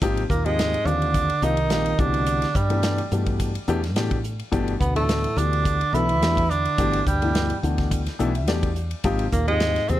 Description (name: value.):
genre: electric jazz fusion.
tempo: 106 BPM.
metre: 4/4.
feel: swing 54% on 16ths.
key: G major.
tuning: A4 = 441 Hz.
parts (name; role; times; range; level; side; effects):
warm grand piano; accompaniment; 0.0-10.0 s; B2 to G5; -27 LUFS; left 4 dB; plate reverb.
woody fretless electric bass; bass; 0.0-10.0 s; G1 to A2; -25 LUFS; equal; none.
modern studio drum kit; drums; 0.0-10.0 s; hi-hat, kick drum, ride cymbal, snare drum; -28 LUFS; equal; none.
clear tenor saxophone; melody; 0.3-10.0 s; G3 to E4; -25 LUFS; right 2 dB; plate reverb, tape echo.
dark bass clarinet; second line; 0.3-10.0 s; G2 to E3; -28 LUFS; right 1 dB; none.
room: light reverb.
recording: dark, warm production.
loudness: -20 LUFS.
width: side -13 dB against mid.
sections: 0.0-10.0 A section.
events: grand piano fill 7.9-9.0.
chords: 0.0 Abmaj9; 2.0 Cmaj9; 4.5 Gmaj9; 9.0 Abmaj9.